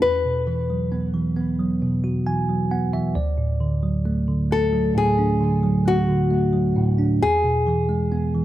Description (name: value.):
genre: pop.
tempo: 67 BPM.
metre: 4/4.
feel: straight.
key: unclear.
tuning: A4 = 440 Hz.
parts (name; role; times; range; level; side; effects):
nylon-string guitar; melody; 0.0-8.4 s; F#4 to B4; -22 LUFS; left 3 dB; none.
bell-like tine electric piano; accompaniment; 0.0-8.4 s; D2 to G#5; -20 LUFS; right 1 dB; phaser.
room: light reverb, studio ambience.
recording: none.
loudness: -19 LUFS.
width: side -14 dB against mid.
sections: 0.0-8.4 A section.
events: tine electric piano fill 1.8-3.6.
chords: 0.0 Esus2; 3.2 D; 7.2 E.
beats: | 0.02 0.92 1.81 2.71 | 3.60 4.50 5.40 6.30 | 7.21 8.12.